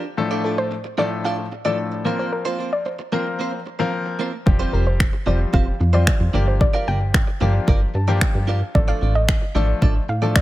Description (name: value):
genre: dance-pop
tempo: 112 BPM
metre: 4/4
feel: straight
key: Bb major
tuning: A4 = 440 Hz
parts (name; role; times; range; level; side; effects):
- direct-recorded clean electric guitar; riff; 0.0-10.4 s; Bb3 to D5; -28 LUFS; right 5 dB; lush chorus
- warm baby grand piano; accompaniment; 0.2-10.4 s; A2 to A5; -25 LUFS; left 4 dB; sidechain pumping
- soft round pluck; melody; 0.4-10.4 s; A4 to G5; -26 LUFS; equal; chorus, dub echo
- plucky analog bass; bass; 4.5-10.4 s; F1 to A2; -19 LUFS; equal; sidechain pumping
- deep house drum kit; drums; 4.5-10.4 s; finger snaps, kick drum; -18 LUFS; equal; none
room: digital ambience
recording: none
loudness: -18 LUFS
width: side -16 dB against mid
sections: 0.0-10.4 A section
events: grand piano fill 7.7-8.8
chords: 0.2 Dm/A; 2.1 Bbsus2; 4.5 Fsus2; 6.3 Gm7; 8.8 Dm/A